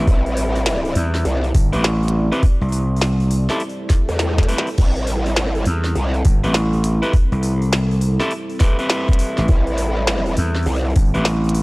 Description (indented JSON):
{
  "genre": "glitch hop",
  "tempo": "102 BPM",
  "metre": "4/4",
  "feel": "swing 64% on 16ths",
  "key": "A minor",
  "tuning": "A4 = 440 Hz",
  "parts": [
    { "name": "dark analog pad", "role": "sustained chords", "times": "0.0-11.6 s", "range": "G3 to D5", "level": "-28 LUFS", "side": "right 1 dB", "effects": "chorus, sidechain pumping" },
    { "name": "electric guitar at the edge of break-up", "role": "stabs", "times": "0.0-11.3 s", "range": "C4 to B4", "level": "-25 LUFS", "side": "equal", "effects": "vintage 12-bit sampler grit, sidechain pumping, analog delay" },
    { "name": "gritty slap bass", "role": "bass", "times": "0.0-11.6 s", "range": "G1 to E2", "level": "-18 LUFS", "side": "equal", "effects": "overdrive" },
    { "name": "growl bass", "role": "bass", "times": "0.1-10.9 s", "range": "A1 to E2", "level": "-20 LUFS", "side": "equal", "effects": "distortion, chorus, tube saturation" },
    { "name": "electronic kick drum", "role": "drums", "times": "0.1-11.1 s", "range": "none", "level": "-14 LUFS", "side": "equal", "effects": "none" },
    { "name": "glitchy drum kit", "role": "drums", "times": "0.1-11.6 s", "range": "crash cymbal, hi-hat, snare drum", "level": "-24 LUFS", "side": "equal", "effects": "overdrive" },
    { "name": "swell", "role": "sound effects", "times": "3.8-4.8 s", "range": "none", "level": "-31 LUFS", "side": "left 2 dB", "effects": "none" }
  ],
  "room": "little or no reverb",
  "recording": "dry, gritty hardware recording",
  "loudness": "-16 LUFS",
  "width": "side -23 dB against mid",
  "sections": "0.0-11.6 A section",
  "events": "swell 3.8-4.8; drum fill 4.2-4.8",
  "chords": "0.0 Am7",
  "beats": "| 0.08 0.67 1.25 1.84 | 2.43 3.02 3.61 4.20 | 4.78 5.37 5.96 6.55 | 7.14 7.72 8.31 8.90 | 9.49 10.08 10.67 11.25"
}